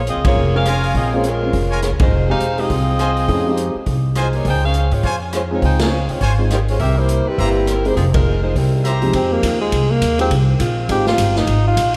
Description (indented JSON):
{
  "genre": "jazz, big band swing",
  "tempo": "205 BPM",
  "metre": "4/4",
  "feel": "swing 60% on 8ths",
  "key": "F minor",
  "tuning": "A4 = 440 Hz",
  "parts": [
    { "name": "warm saxophone section", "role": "melody", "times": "0.0-9.0 s", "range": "F3 to G5", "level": "-23 LUFS", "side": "equal", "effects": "tape echo" },
    { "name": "upright bass", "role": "bass", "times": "0.0-12.0 s", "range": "E1 to Ab2", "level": "-21 LUFS", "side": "equal", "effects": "none" },
    { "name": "swinging big-band drum kit", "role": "drums", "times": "0.1-12.0 s", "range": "hi-hat, kick drum, ride cymbal, rim click, snare drum", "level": "-25 LUFS", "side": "equal", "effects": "none" },
    { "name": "warm upright piano", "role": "accompaniment", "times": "0.3-11.3 s", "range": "F2 to Ab4", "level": "-26 LUFS", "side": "equal", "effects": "subtle chorus" },
    { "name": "brilliant trumpet section", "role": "stabs", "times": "0.7-9.1 s", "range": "F4 to Bb5", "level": "-30 LUFS", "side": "equal", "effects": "tape echo" },
    { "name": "breathy tenor saxophone", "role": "melody", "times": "9.2-11.9 s", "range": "Ab3 to G4", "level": "-21 LUFS", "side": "equal", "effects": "tape echo" },
    { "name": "mellow saxophone section", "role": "sustained chords", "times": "9.4-11.0 s", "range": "Eb3 to F4", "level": "-30 LUFS", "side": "equal", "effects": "none" }
  ],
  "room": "moderate lush hall reverb, RT60 1.9 s, studio reverb",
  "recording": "dreamy mix soaked in reverb",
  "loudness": "-17 LUFS",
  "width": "mono",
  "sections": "0.0-9.1 A section; 9.1-12.0 B section",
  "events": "band accent 0.2, 2.0, 5.8, 8.1; tenor saxophone solo 9.1-12.0",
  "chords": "0.0 Bbm7; 2.1 Fm7; 4.5 Dbmaj7; 6.8 C7; 8.0 Fm7; 8.6 C7; 9.1 Fm7",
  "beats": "0.07 0.36 0.66 | 0.95 1.24 1.53 1.83 | 2.12 2.41 2.70 3.00 | 3.29 3.58 3.87 4.17 | 4.46 4.75 5.04 5.33 | 5.63 5.92 6.21 6.50 | 6.80 7.09 7.38 7.67 | 7.97 8.26 8.55 8.84 | 9.14 9.43 9.72 10.01 | 10.31 10.60 10.89 11.18 | 11.48 11.77"
}